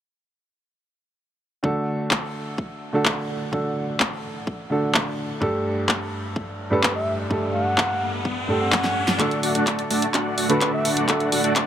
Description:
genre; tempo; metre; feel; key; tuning
EDM, festival progressive house; 127 BPM; 4/4; straight; D major; A4 = 440 Hz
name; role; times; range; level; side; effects
dark grand piano; accompaniment; 1.6-11.7 s; G2 to A4; -25 LUFS; right 1 dB; sidechain pumping, tape echo
electronic kick drum; drums; 1.6-11.7 s; none; -30 LUFS; equal; high-pass filter on kick
pop drum kit; drums; 2.1-11.7 s; handclaps, hi-hat, snare drum; -24 LUFS; left 1 dB; none
riser; sound effects; 6.7-9.2 s; none; -32 LUFS; left 1 dB; none
trumpet with bucket mute; melody; 6.7-10.9 s; B4 to F#5; -27 LUFS; equal; tape echo
dense compressed supersaw; riff; 9.2-11.7 s; A3 to A5; -22 LUFS; equal; sidechain pumping, low-pass filter, tape echo
room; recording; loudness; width
light reverb; none; -20 LUFS; side -10 dB against mid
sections
1.6-9.2 A section; 9.2-11.7 B section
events
riser 6.7-9.2; drum fill 8.7-9.2, 9.2-11.7; build-up 9.2-11.7; filter sweep on supersaw synth 9.2-11.7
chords
1.6 D; 5.4 Gsus2; 9.2 D

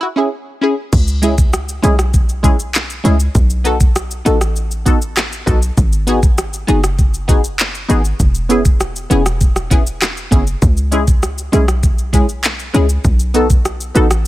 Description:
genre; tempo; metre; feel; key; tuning
dancehall; 99 BPM; 4/4; straight; C# minor; A4 = 440 Hz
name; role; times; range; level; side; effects
punchy chord stab; accompaniment; 0.0-14.1 s; G#3 to A4; -16 LUFS; equal; chorus
short 808-style bass; bass; 0.9-14.3 s; E1 to C#2; -17 LUFS; equal; none
afro-pop drum kit; drums; 0.9-14.2 s; crash cymbal, handclaps, hi-hat, kick drum, rim click, shaker; -14 LUFS; equal; none
room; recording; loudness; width
digital ambience; none; -12 LUFS; side -16 dB against mid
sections
0.9-14.3 A section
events
break 0.0-0.9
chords
0.0 E6; 0.9 C#m; 3.4 B7; 5.8 G#m7; 8.2 E6; 10.6 C#m; 13.0 B7

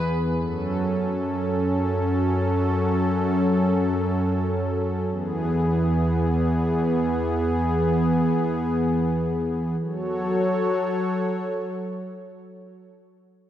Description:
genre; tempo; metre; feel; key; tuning
synthwave; free time; none; none; F# minor; A4 = 441 Hz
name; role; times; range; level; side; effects
warm analog pad; sustained chords; 0.0-12.9 s; E2 to C#5; -21 LUFS; equal; chorus
room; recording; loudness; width
moderate lush hall reverb, RT60 2.6 s; none; -21 LUFS; side -11 dB against mid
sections
0.0-9.8 A section; 9.8-12.1 B section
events
none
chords
0.4 F#m; 5.1 E; 9.8 F#m

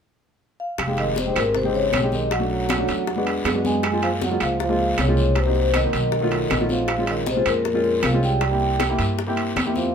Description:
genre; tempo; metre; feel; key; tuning
Afro-Cuban jazz; 157 BPM; 4/4; straight; F minor; A4 = 438 Hz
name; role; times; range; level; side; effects
vibraphone with soft mallets; melody; 0.6-9.9 s; Bb4 to G#5; -24 LUFS; left 3 dB; none
upright bass; bass; 0.8-9.9 s; F1 to G2; -26 LUFS; equal; none
bongos; percussion; 0.8-9.8 s; none; -32 LUFS; left 7 dB; none
claves; percussion; 0.8-9.8 s; none; -34 LUFS; right 7 dB; none
congas; percussion; 0.8-9.9 s; none; -30 LUFS; left 3 dB; none
guiro; percussion; 0.8-9.9 s; none; -35 LUFS; left 4 dB; none
timbales; percussion; 0.8-9.8 s; none; -28 LUFS; right 5 dB; none
warm baby grand piano; accompaniment; 0.9-9.9 s; Gb3 to G4; -25 LUFS; equal; none
breathy trombone; second line; 1.0-9.9 s; Bb2 to G#3; -28 LUFS; right 7 dB; none
room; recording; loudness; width
moderate studio reverb, RT60 0.8 s; minimal, uncompressed stereo recording; -19 LUFS; side -7 dB against mid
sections
0.8-9.9 A section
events
none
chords
0.0 N.C.; 0.8 Fm9; 2.3 Bm7; 3.1 E9; 3.8 Gbmaj9#11; 5.4 Cm7b5; 6.1 B7#11; 6.9 Bbm9; 8.4 C7

